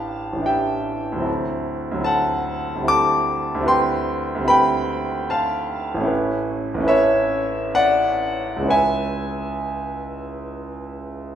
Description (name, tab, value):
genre	classical, impressionist solo piano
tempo	61-76 BPM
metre	3/4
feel	rubato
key	unclear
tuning	A4 = 439 Hz
part	clear concert grand piano	solo	0.0-11.4 s	A1 to D6	-19 LUFS	equal	none
room	wet recital hall reverb, RT60 1.7 s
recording	recorded in a church or concert hall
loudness	-19 LUFS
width	side -9 dB against mid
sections	0.0-11.4 A section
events	none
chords	0.0 Em7/A; 1.3 D9; 2.9 Am7/D; 3.7 Cmaj9/D; 6.1 Aadd9; 8.7 C#m7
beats	0.47 | 1.27 2.06 2.91 | 3.71 4.51 5.31 | 6.10 6.90 7.76 | 8.70 9.67 10.62